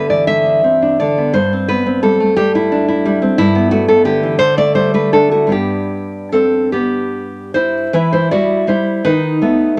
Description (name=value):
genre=romantic piece for solo classical guitar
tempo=48-61 BPM (dotted quarters)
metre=6/8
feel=rubato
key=G major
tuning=A4 = 440 Hz
part: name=nylon-string guitar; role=solo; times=0.0-9.8 s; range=G2 to E5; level=-14 LUFS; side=equal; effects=none
room=moderate studio reverb, RT60 0.6 s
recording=none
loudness=-14 LUFS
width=mono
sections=0.0-7.9 A section; 7.9-9.8 B section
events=none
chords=0.0 G; 7.9 Em; 9.0 B7/D#